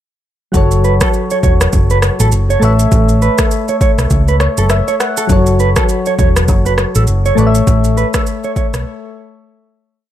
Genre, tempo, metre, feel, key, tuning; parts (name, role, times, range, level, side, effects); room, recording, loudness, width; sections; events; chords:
afrobeats; 101 BPM; 4/4; swing 58% on 16ths; A major; A4 = 440 Hz
soft electric-piano-like synth keys; accompaniment; 0.5-10.1 s; F#3 to F#5; -17 LUFS; left 3 dB; chorus
hollow-body short-scale fingered electric bass; bass; 0.5-8.8 s; E1 to C#2; -13 LUFS; equal
deep house drum kit; drums; 0.5-8.9 s; kick drum, rim click, shaker; -15 LUFS; equal; overdrive
mellow electric guitar; riff; 0.8-8.7 s; A4 to C#5; -19 LUFS; right 5 dB; harmonic tremolo, ping-pong delay
little or no reverb; -10 LUFS; side -11 dB against mid
0.5-10.0 verse
synth keys fill 4.1-5.3; fade-out 7.7-10.0; break 8.9-10.0
0.5 F#m; 2.6 A; 5.3 F#m; 7.4 A